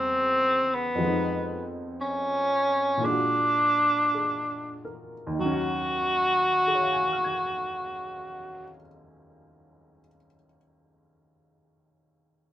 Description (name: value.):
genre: jazz ballad.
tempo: 46-66 BPM.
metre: 4/4.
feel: swing 69% on 8ths.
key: Eb minor.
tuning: A4 = 440 Hz.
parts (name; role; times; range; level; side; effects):
clear tenor saxophone; melody; 0.0-8.7 s; Cb4 to Gb4; -24 LUFS; equal; none.
clear upright piano; accompaniment; 0.0-12.5 s; Eb2 to Ab6; -32 LUFS; left 1 dB; none.
room: light reverb.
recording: minimal, uncompressed stereo recording.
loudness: -23 LUFS.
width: side -12 dB against mid.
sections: 0.0-5.4 A section; 5.4-10.5 B section.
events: slowing down 0.0-5.4.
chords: 0.0 Edim7; 1.0 Fm7b5; 3.0 Bb7b13; 5.4 Ebm9.